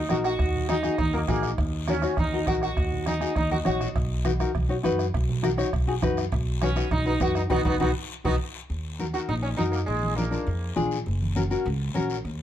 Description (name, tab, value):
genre	latin, cumbia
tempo	203 BPM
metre	4/4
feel	straight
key	Eb minor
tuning	A4 = 439 Hz
part	sitar	second line	0.0-3.9, 6.6-10.7 s	Ab3 to Gb4	-28 LUFS	right 2 dB	none
part	upright bass	bass	0.0-12.4 s	Gb1 to F#2	-28 LUFS	equal	none
part	nylon-string guitar	accompaniment	0.1-12.2 s	Db4 to Db5	-28 LUFS	left 4 dB	none
part	bombo	percussion	0.1-8.3 s	none	-30 LUFS	right 2 dB	none
part	congas	percussion	0.1-12.1 s	none	-32 LUFS	right 2 dB	none
part	guiro	percussion	0.1-12.4 s	none	-42 LUFS	left 8 dB	none
room	light reverb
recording	dark, warm production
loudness	-23 LUFS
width	side -11 dB against mid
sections	0.0-8.7 A section; 8.7-12.4 B section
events	sitar solo 0.0-8.7, 8.7-12.4; drum fill 3.5-4.0, 8.0-8.7; band accent 7.5-8.7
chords	0.0 Ebm; 4.0 B; 8.7 Ebm; 9.9 Bb7; 11.1 Gb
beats	0.10 | 0.40 0.69 0.99 1.29 | 1.58 1.88 2.18 2.47 | 2.77 3.07 3.36 3.66 | 3.96 4.25 4.55 4.84 | 5.14 5.44 5.73 6.03 | 6.33 6.62 6.92 7.21 | 7.51 7.81 8.10 8.40 | 8.69 8.99 9.29 9.58 | 9.88 10.18 10.47 10.77 | 11.06 11.36 11.65 11.95 | 12.25